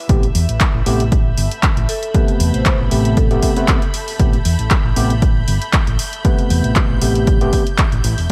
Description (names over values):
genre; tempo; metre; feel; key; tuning
deep house; 117 BPM; 4/4; swing 54% on 16ths; A minor; A4 = 441 Hz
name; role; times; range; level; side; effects
dark studio string section; texture; 0.0-8.3 s; E4 to B5; -32 LUFS; equal; sidechain pumping
overdriven tine electric piano; stabs; 0.1-8.3 s; C3 to B4; -23 LUFS; equal; subtle chorus, sidechain pumping, dub echo
fingered electric bass; bass; 0.1-8.3 s; E1 to E2; -20 LUFS; equal; tube saturation, sidechain pumping
deep house drum kit; drums; 0.1-8.3 s; handclaps, hi-hat; -24 LUFS; equal; overdrive, studio reverb
electronic kick drum; drums; 0.1-7.9 s; none; -18 LUFS; equal; overdrive, studio reverb
soft string machine; texture; 0.4-8.3 s; G6; -36 LUFS; equal; ensemble chorus, sidechain pumping
vibraphone with medium mallets; melody; 1.9-3.4 s; G4 to C5; -29 LUFS; equal; dub echo
room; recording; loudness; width
little or no reverb; none; -16 LUFS; mono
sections
0.0-8.3 A section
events
none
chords
0.1 Am9